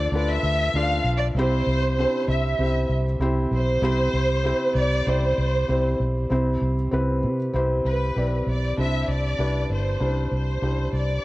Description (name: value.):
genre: piano-driven pop.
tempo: 97 BPM.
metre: 4/4.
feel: straight.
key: C major.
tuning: A4 = 437 Hz.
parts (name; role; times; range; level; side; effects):
dark studio violin section; melody; 0.0-11.2 s; B4 to F5; -26 LUFS; equal; none.
felt-muted upright piano; accompaniment; 0.0-11.2 s; C3 to D5; -26 LUFS; equal; none.
vintage muted fingered electric bass; bass; 0.0-11.2 s; G1 to C3; -24 LUFS; equal; none.
room: light reverb, small room ambience.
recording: worn, warbling old tape, cassette tape, warbly pitch drift.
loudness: -20 LUFS.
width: side -18 dB against mid.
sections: 0.0-6.3 A section; 6.3-8.8 B section; 8.8-11.2 C section.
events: none.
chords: 0.0 Dm7; 1.4 C; 8.8 Cadd9.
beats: 0.12 0.74 | 1.36 1.98 2.59 3.21 | 3.83 4.45 5.07 5.68 | 6.30 6.92 7.54 8.15 | 8.77 9.39 10.01 10.63.